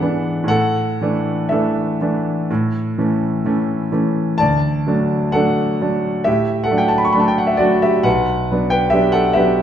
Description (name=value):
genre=classical, romantic nocturne for solo piano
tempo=59-70 BPM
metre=4/4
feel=rubato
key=D major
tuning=A4 = 440 Hz
part: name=clear concert grand piano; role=solo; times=0.0-9.6 s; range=B1 to C#6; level=-15 LUFS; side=equal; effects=none
room=moderate scoring stage reverb, RT60 1.4 s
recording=minimal, uncompressed stereo recording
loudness=-15 LUFS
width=side -9 dB against mid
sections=0.0-9.6 A section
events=none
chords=0.0 E7/G#; 0.5 Asus4; 2.5 A; 4.4 D; 8.1 Bm